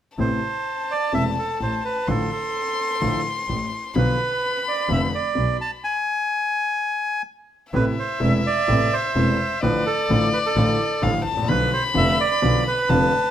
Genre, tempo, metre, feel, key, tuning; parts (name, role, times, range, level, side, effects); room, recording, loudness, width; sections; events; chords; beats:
tango; 128 BPM; 4/4; rubato; A harmonic minor; A4 = 445 Hz
bandoneon; melody; 0.2-13.3 s; A4 to A5; -23 LUFS; right 3 dB
warm violin; second line; 0.2-13.3 s; D5 to C6; -26 LUFS; left 5 dB
clear concert grand piano; accompaniment; 0.2-13.1 s; E1 to F4; -24 LUFS; left 1 dB
clear double bass; bass; 0.2-13.1 s; E1 to B1; -24 LUFS; right 1 dB
moderate studio reverb, RT60 0.6 s; -19 LUFS; side -10 dB against mid
0.2-7.7 A section; 7.7-13.3 B section
stop 5.8-7.7
0.2 Amadd9; 2.1 Dm/A; 3.9 Bdim; 5.8 N.C.; 7.7 Amadd9; 9.6 Dm/A; 11.5 Bdim
| 0.18 0.66 1.13 1.60 | 2.08 2.54 3.01 3.48 | 3.95 4.42 4.89 5.36 | 5.83 6.30 6.77 7.25 | 7.74 8.21 8.69 9.16 | 9.63 10.10 10.56 11.03 | 11.49 11.96 12.43 12.90